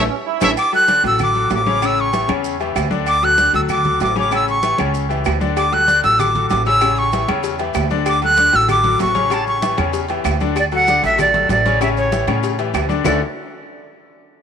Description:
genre	latin, salsa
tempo	192 BPM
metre	4/4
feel	straight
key	D major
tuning	A4 = 440 Hz
part	clear trumpet section	melody	0.0-0.5 s	A4 to E5	-21 LUFS	right 1 dB	none
part	bright grand piano	accompaniment	0.0-13.2 s	C#3 to D5	-22 LUFS	left 12 dB	none
part	upright bass	bass	0.0-13.2 s	A1 to A2	-23 LUFS	right 1 dB	none
part	bright trombone section	second line	0.1-0.5 s	C#4 to E4	-26 LUFS	right 14 dB	none
part	claves	percussion	0.4-13.1 s	none	-30 LUFS	left 11 dB	none
part	congas	percussion	0.4-13.1 s	none	-27 LUFS	right 1 dB	none
part	cowbell and bongos	percussion	0.4-0.5, 5.6-13.1 s	none	-29 LUFS	left 12 dB	none
part	maracas	percussion	0.4-13.1 s	none	-37 LUFS	right 14 dB	none
part	timbales and agogo bells	percussion	0.4-13.1 s	none	-25 LUFS	right 15 dB	none
part	bright reedy jazz flute	melody	0.6-13.2 s	C#5 to F#6	-16 LUFS	right 1 dB	none
room	moderate plate reverb, RT60 3.0 s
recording	1960s-style stereo with parts hard left and right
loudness	-14 LUFS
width	side -8 dB against mid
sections	0.6-10.6 A section; 10.6-13.1 B section; 13.1-14.3 C section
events	band accent 0.0-0.6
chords	0.0 A; 0.6 Dmaj7; 1.8 A7; 3.1 Dmaj7; 4.3 A7; 5.6 Dmaj7; 6.8 A7; 8.1 Dmaj7; 9.3 A7; 10.6 Dmaj7; 11.8 A7; 13.1 Dmaj7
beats	0.26 | 0.57 0.89 1.20 1.51 | 1.82 2.14 2.45 2.76 | 3.07 3.39 3.70 4.01 | 4.32 4.63 4.95 5.26 | 5.57 5.88 6.20 6.51 | 6.82 7.13 7.44 7.76 | 8.07 8.38 8.69 9.00 | 9.32 9.63 9.94 10.25 | 10.56 10.88 11.19 11.50 | 11.81 12.12 12.43 12.75 | 13.06

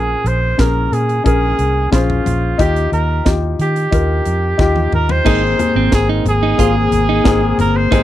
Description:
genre	piano-driven pop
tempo	90 BPM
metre	4/4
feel	straight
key	Ab major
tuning	A4 = 440 Hz
part	clear trumpet	melody	0.0-8.0 s	F4 to C5	-18 LUFS	right 2 dB	slapback echo
part	warm upright piano	accompaniment	0.0-8.0 s	Ab2 to C5	-18 LUFS	left 6 dB	none
part	vintage muted fingered electric bass	bass	0.0-8.0 s	G1 to Eb3	-17 LUFS	right 1 dB	none
part	modern studio drum kit	drums	0.3-8.0 s	crash cymbal, hi-hat, kick drum, snare drum, toms	-17 LUFS	right 1 dB	none
part	clean electric guitar	riff	5.3-8.0 s	C4 to F4	-19 LUFS	right 10 dB	none
room	little or no reverb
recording	dry, close 1970s-style studio recording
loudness	-12 LUFS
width	side -13 dB against mid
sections	0.0-5.3 A section; 5.3-8.0 B section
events	drum fill 4.6-5.3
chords	0.0 Bbm7; 2.6 Ebadd9; 5.3 Abadd9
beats	0.59 1.26 1.92 | 2.59 3.26 3.92 4.59 | 5.26 5.92 6.59 7.25 | 7.92

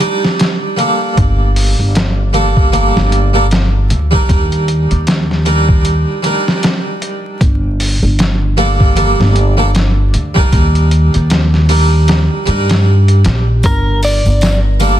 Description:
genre	trip hop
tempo	77 BPM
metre	4/4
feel	swing 58% on 16ths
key	G minor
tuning	A4 = 440 Hz
part	harpsichord	accompaniment	0.0-15.0 s	G3 to D5	-16 LUFS	right 2 dB	tremolo, tape echo
part	trip hop sampler-style drum kit	drums	0.0-15.0 s	hi-hat, kick drum, snare drum	-15 LUFS	equal	overdrive, vintage 12-bit sampler grit
part	upright bass	bass	1.2-15.0 s	G1 to G2	-12 LUFS	equal	tube saturation
part	tambourine	percussion	13.6-15.0 s	none	-30 LUFS	right 5 dB	none
part	clean electric guitar	melody	13.7-14.6 s	Bb4 to D5	-17 LUFS	equal	tape echo
room	studio ambience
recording	dense, heavily limited modern master, vinyl crackle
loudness	-10 LUFS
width	side -12 dB against mid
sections	0.0-15.0 A section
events	none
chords	0.0 Ebmaj7; 7.4 Gmadd9; 10.5 Ebmaj7; 13.6 Gmadd9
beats	0.39 | 1.17 1.95 2.73 3.51 | 4.29 5.07 5.85 6.63 | 7.41 8.18 8.96 9.74 | 10.52 11.30 12.08 12.86 | 13.64 14.42

